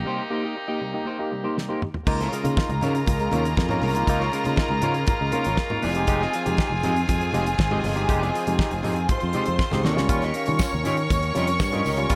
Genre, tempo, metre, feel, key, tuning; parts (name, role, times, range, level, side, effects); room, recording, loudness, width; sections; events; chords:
disco; 120 BPM; 4/4; straight; A4 = 440 Hz
barky tine electric piano; accompaniment; 0.0-12.2 s; C3 to G4; -31 LUFS; equal; overdrive
muted French horn section; sustained chords; 0.0-12.2 s; C3 to Bb4; -34 LUFS; equal
fingered electric bass; bass; 0.0-12.2 s; F1 to Eb3; -29 LUFS; equal
clean electric guitar; accompaniment; 0.1-12.1 s; Bb3 to F5; -34 LUFS; equal; lush chorus
damped 70s drum kit; drums; 1.6-12.2 s; crash cymbal, hi-hat, kick drum, snare drum, toms; -28 LUFS; equal
clear symphonic string section; second line; 2.1-12.2 s; Ab4 to Db6; -30 LUFS; equal
congas; percussion; 2.1-12.2 s; -36 LUFS; equal
tambourine; percussion; 10.1-12.2 s; -44 LUFS; equal
light reverb, small room ambience; -23 LUFS; mono
0.0-2.1 A section; 2.1-12.2 B section
break 0.1-2.1; drum fill 1.6-2.1, 9.6-10.1
0.0 Cm7; 2.1 Db6; 5.8 Fm7; 9.8 Eb7